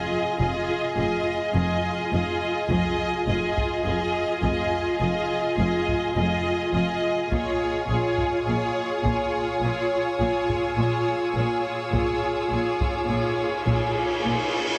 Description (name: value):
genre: cinematic, suspense film score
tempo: 52 BPM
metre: 4/4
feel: straight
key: F minor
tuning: A4 = 443 Hz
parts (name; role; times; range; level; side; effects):
- warm symphonic violin section; melody; 0.0-14.8 s; Db5 to Eb5; -34 LUFS; equal; none
- rich studio violin section; second line; 0.0-14.8 s; Ab4; -33 LUFS; equal; none
- rich symphonic viola section; accompaniment; 0.0-14.8 s; F4; -31 LUFS; equal; none
- ethereal airy pad; sustained chords; 0.0-14.8 s; F4 to Ab5; -32 LUFS; equal; ensemble chorus, built-in reverb
- dark symphonic cello section; riff; 0.0-14.6 s; F2 to Bb3; -35 LUFS; equal; none
- clear symphonic double bass section; bass; 0.4-14.3 s; F1 to Bb1; -34 LUFS; equal; none
- warm symphonic cello section; bass; 0.4-14.3 s; F2 to Bb2; -35 LUFS; equal; none
- taiko ensemble; drums; 2.7-14.8 s; none; -35 LUFS; equal; none
- warm symphonic violin section; texture; 7.3-14.8 s; Db6 to E6; -40 LUFS; equal; none
- cymbal swell; sound effects; 13.0-14.8 s; none; -34 LUFS; equal; none
room: wet scoring stage reverb, RT60 1.9 s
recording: heavily compressed radio sound, multiband compression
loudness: -25 LUFS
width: mono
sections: 0.0-14.8 A section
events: cymbal swell 13.0-14.8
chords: 0.0 Fm7; 7.3 Bbm7